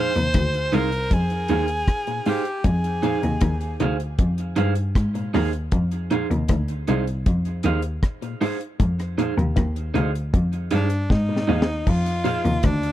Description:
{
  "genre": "roots reggae",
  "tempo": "78 BPM",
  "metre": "4/4",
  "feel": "straight",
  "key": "F dorian",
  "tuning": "A4 = 440 Hz",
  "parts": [
    { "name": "clear tenor saxophone", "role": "melody", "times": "0.0-3.8, 10.7-12.9 s", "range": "D4 to C5", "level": "-26 LUFS", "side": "equal", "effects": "tape echo" },
    { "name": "electric guitar at the edge of break-up", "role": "accompaniment", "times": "0.0-12.4 s", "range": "Eb4 to F5", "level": "-27 LUFS", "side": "right 5 dB", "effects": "lush chorus, tape echo" },
    { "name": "electric guitar with an envelope filter", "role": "arpeggios", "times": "0.0-12.8 s", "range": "Ab2 to Eb3", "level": "-29 LUFS", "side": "left 6 dB", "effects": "tremolo" },
    { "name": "muted cello", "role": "bass", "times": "0.0-12.8 s", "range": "C2 to Ab2", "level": "-23 LUFS", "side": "equal", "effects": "none" },
    { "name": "deep reggae drum kit", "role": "drums", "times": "0.2-12.9 s", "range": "crash cymbal, hi-hat, kick drum, rim click, snare drum", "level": "-21 LUFS", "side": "equal", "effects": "none" }
  ],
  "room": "studio reverb",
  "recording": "dry, close 1970s-style studio recording",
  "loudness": "-20 LUFS",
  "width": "side -13 dB against mid",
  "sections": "0.0-11.9 A section; 11.9-12.9 B section",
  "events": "drum fill 11.1-11.9",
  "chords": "0.0 Fm7; 11.9 Fm"
}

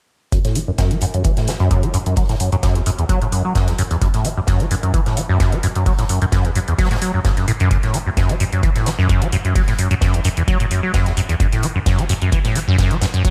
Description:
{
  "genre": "acid house",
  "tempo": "130 BPM",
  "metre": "4/4",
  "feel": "swing 53% on 16ths",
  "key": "F# minor",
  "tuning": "A4 = 440 Hz",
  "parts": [
    { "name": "deep acid bass", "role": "riff", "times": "0.3-13.3 s", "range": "E2 to F#3", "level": "-20 LUFS", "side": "equal", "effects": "tube saturation, analog chorus, vintage 12-bit sampler grit" },
    { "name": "electronic hi-hat", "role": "drums", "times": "0.3-13.3 s", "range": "none", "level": "-32 LUFS", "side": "equal", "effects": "overdrive" },
    { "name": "electronic kick drum", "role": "drums", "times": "0.3-13.3 s", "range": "none", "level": "-22 LUFS", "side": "equal", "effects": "overdrive" },
    { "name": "open jazz drum kit", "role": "drums", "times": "0.3-13.3 s", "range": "hi-hat, snare drum", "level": "-35 LUFS", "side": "equal", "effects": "high-pass filter on hats, high-pass filter on snare, high-pass filter on room, gated reverb" }
  ],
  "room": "light reverb, small room ambience",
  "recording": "bright 1980s-style digital production",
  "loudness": "-18 LUFS",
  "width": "mono",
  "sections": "0.3-13.3 A section",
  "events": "none",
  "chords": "none"
}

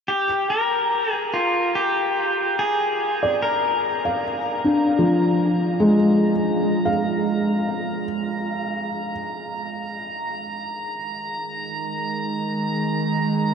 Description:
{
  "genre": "ambient",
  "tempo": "73 BPM",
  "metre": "3/4",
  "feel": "straight",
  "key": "unclear",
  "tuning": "A4 = 441 Hz",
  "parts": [
    { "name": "pedal steel guitar", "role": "melody", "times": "0.1-4.6 s", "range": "F4 to Bb4", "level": "-22 LUFS", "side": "left 1 dB", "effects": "diffuse ambient delay" },
    { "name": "drifting glass-harmonics texture", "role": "texture", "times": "2.0-13.5 s", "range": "Bb5", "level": "-31 LUFS", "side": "right 2 dB", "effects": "chorus, built-in reverb" },
    { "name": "felt-muted upright piano", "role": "arpeggios", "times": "3.2-13.5 s", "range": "F3 to F5", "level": "-20 LUFS", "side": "equal", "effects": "diffuse ambient delay" },
    { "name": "bowed-like drone", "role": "drone", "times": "11.4-13.5 s", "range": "Eb3 to Ab3", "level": "-25 LUFS", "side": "right 2 dB", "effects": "built-in reverb" }
  ],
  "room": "wet huge ambient reverb, RT60 8.3 s",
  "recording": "dark, warm production",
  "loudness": "-20 LUFS",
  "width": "side -6 dB against mid",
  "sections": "0.1-13.5 A section",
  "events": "fade-in on synth texture 0.1-13.5",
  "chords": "0.1 Absus2"
}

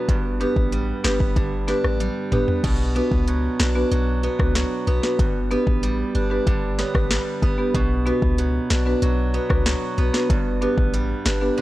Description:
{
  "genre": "dancehall",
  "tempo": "94 BPM",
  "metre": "4/4",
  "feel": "straight",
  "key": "B minor",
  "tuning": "A4 = 441 Hz",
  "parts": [
    { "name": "picked steel-string acoustic guitar", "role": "arpeggios", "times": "0.0-11.6 s", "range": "G2 to D4", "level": "-28 LUFS", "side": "right 3 dB", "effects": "tape echo" },
    { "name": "clean 808-style bass", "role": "bass", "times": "0.1-11.5 s", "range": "G1 to C#2", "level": "-24 LUFS", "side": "equal", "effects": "none" },
    { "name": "afro-pop drum kit", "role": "drums", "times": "0.1-11.4 s", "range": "crash cymbal, hi-hat, kick drum, rim click, snare drum, toms", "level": "-23 LUFS", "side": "equal", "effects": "none" },
    { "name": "marimba with medium mallets", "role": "accompaniment", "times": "0.4-11.5 s", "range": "B3 to C#5", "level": "-24 LUFS", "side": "equal", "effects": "sidechain pumping" }
  ],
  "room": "little or no reverb",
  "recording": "dry, gritty hardware recording, cassette tape",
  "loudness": "-19 LUFS",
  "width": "side -16 dB against mid",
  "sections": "0.0-2.6 A section; 2.6-11.6 B section",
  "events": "drum fill 2.0-2.6",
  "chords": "0.1 G; 2.6 Bm; 5.2 G; 7.7 Bm; 10.3 G"
}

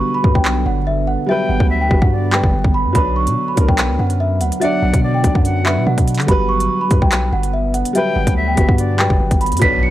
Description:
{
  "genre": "hip hop, drill",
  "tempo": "144 BPM",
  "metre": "4/4",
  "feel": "half-time",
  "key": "unclear",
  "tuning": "A4 = 440 Hz",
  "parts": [
    { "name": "large celesta", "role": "melody", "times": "0.0-9.9 s", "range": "E5 to C#7", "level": "-21 LUFS", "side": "right 1 dB", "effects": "analog delay" },
    { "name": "dark concert grand piano", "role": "accompaniment", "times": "0.0-9.9 s", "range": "F#3 to D5", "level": "-22 LUFS", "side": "left 1 dB", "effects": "none" },
    { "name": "deep dark ambient pad", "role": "sustained chords", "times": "0.0-9.9 s", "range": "D3 to D4", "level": "-24 LUFS", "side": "right 1 dB", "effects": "chorus, built-in reverb" },
    { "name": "long sustained 808-style bass", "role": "bass", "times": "0.2-9.9 s", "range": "F#1 to D3", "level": "-18 LUFS", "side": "equal", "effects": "none" },
    { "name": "drill drum kit", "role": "drums", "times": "0.2-9.7 s", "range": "handclaps, hi-hat, kick drum", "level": "-16 LUFS", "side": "equal", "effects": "none" },
    { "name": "reedy silver concert flute", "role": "second line", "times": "1.3-9.2 s", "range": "D5 to G5", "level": "-24 LUFS", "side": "left 3 dB", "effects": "analog delay" },
    { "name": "impact", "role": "sound effects", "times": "9.6-9.9 s", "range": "none", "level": "-22 LUFS", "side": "equal", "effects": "none" }
  ],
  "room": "small room ambience",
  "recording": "dry, gritty hardware recording, transformer saturation, vinyl crackle",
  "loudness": "-13 LUFS",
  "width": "side -14 dB against mid",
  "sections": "0.0-9.6 A section",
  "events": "break 0.0-3.0; impact 9.6",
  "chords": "0.0 Gmaj7; 3.0 Bm; 6.3 Gmaj7"
}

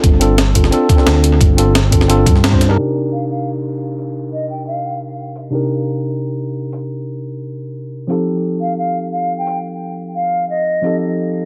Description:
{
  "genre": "liquid drum and bass",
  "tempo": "175 BPM",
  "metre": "4/4",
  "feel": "straight",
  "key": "C dorian",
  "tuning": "A4 = 441 Hz",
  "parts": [
    { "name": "mellow tine electric piano", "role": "accompaniment", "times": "0.0-11.5 s", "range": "C3 to C5", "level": "-21 LUFS", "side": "equal", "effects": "analog delay" },
    { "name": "smooth synth bass", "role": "bass", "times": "0.0-2.8 s", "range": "G1 to G2", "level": "-16 LUFS", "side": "equal", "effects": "none" },
    { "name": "breakbeat sampler-style drum kit", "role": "drums", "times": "0.0-10.9 s", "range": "hi-hat, snare drum", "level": "-21 LUFS", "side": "equal", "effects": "low-pass filter on hats, low-pass filter on snare, low-pass filter on room, analog delay" },
    { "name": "electronic kick drum", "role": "drums", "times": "0.0-2.6 s", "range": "none", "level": "-15 LUFS", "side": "equal", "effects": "none" },
    { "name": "downlifter", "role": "sound effects", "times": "3.0-5.5 s", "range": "none", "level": "-51 LUFS", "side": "equal", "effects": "none" },
    { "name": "hollow concert flute", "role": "melody", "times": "3.1-5.0, 8.6-11.0 s", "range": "Eb5 to G5", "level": "-23 LUFS", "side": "equal", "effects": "analog delay" }
  ],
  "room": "light reverb",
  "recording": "echo-heavy mix, low-pass filter",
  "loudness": "-16 LUFS",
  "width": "mono",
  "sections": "0.0-2.8 A section; 2.8-11.5 B section",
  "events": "band accent 2.4; filter sweep 2.8-11.5",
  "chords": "0.0 G9sus4; 2.8 Cm7; 8.1 F9"
}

